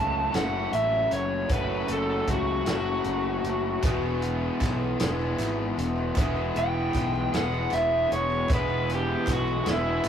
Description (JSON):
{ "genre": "indie rock", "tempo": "51 BPM (dotted quarters)", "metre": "6/8", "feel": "straight", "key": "unclear", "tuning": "A4 = 441 Hz", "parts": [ { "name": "raw garage guitar", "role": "melody", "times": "0.0-10.1 s", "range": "E4 to A5", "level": "-27 LUFS", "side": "equal", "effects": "overdrive" }, { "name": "raw garage guitar", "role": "riff", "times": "0.0-10.1 s", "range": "E2 to G#4", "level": "-30 LUFS", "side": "left 3 dB", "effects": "overdrive, spring reverb" }, { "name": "raw garage guitar", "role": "riff", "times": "0.0-10.1 s", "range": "F#2 to E4", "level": "-34 LUFS", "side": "right 4 dB", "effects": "overdrive" }, { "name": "fuzz picked electric bass", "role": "bass", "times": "0.0-10.1 s", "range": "E1 to C#2", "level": "-31 LUFS", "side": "equal", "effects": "overdrive" }, { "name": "vintage drum kit", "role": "drums", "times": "0.3-10.1 s", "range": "hi-hat, kick drum, snare drum", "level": "-29 LUFS", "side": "right 1 dB", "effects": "none" }, { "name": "group handclap", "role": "percussion", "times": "3.8-10.1 s", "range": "none", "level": "-42 LUFS", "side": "right 2 dB", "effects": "none" } ], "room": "moderate small room reverb, RT60 0.5 s", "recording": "rough rehearsal-room recording, warm saturation", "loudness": "-24 LUFS", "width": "side -8 dB against mid", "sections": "0.0-10.1 A section", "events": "overdriven electric guitar solo 0.0-10.1", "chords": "0.0 F#m; 3.8 E" }